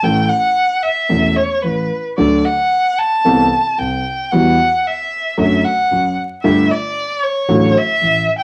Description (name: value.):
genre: tango.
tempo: 112 BPM.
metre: 4/4.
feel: rubato.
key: D major.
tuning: A4 = 438 Hz.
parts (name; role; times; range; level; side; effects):
warm violin; second line; 0.0-8.4 s; B4 to A5; -18 LUFS; equal; none.
dark concert grand piano; accompaniment; 0.0-8.2 s; E1 to A4; -18 LUFS; equal; none.
upright bass; bass; 0.0-8.2 s; E1 to E2; -30 LUFS; equal; none.
room: wet studio reverb, RT60 0.7 s.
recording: vinyl crackle.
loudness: -16 LUFS.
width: mono.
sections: 0.0-8.4 A section.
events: violin solo 0.0-8.4.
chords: 0.0 A; 2.2 D; 3.3 Amadd9/C; 4.3 Emadd9; 5.4 D/F#; 6.4 Gsus2; 7.5 D/A.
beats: | 0.03 0.57 1.11 1.65 | 2.19 2.73 3.26 3.80 | 4.33 4.86 5.39 5.92 | 6.44 6.97 7.50 8.02.